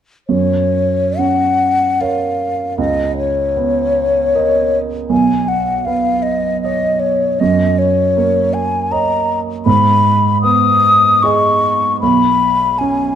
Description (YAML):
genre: classical, impressionist duo for flute and grand piano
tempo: 64-82 BPM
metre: 3/4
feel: rubato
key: F# major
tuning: A4 = 440 Hz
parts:
  - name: mellow hollow concert flute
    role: melody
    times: 0.3-13.2 s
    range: C#5 to D#6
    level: -14 LUFS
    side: left 3 dB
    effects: none
  - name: warm baby grand piano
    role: accompaniment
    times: 0.3-13.2 s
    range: B1 to D#5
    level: -16 LUFS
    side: right 4 dB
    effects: none
room: moderate recital hall reverb, RT60 1.4 s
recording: dark, warm production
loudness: -12 LUFS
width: side -9 dB against mid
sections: 0.3-13.2 A section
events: none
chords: 0.3 F#maj7; 2.8 C#sus2; 5.1 Badd9; 7.4 F#6; 9.7 G#m; 12.0 Bsus2